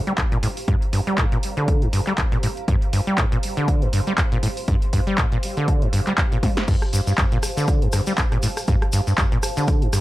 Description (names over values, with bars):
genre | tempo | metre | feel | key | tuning
acid house | 120 BPM | 4/4 | swing 56% on 16ths | G minor | A4 = 439 Hz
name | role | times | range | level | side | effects
granular cloud pad | texture | 0.0-10.0 s | G4 to C6 | -32 LUFS | right 2 dB | built-in reverb, sidechain pumping
acid bass, saw | riff | 0.1-10.0 s | F2 to G3 | -22 LUFS | equal | overdrive, wide subtle chorus, sidechain pumping, analog delay
punchy analog drum machine | drums | 0.1-10.0 s | crash cymbal, handclaps, hi-hat, rim click, snare drum, toms | -27 LUFS | equal | none
electronic kick drum | drums | 0.2-9.8 s | none | -21 LUFS | equal | none
tube shaker | percussion | 6.7-10.0 s | none | -32 LUFS | left 2 dB | none
room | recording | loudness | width
light reverb | none | -18 LUFS | side -16 dB against mid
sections
0.0-10.0 A section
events
drum fill 6.4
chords
0.0 Gm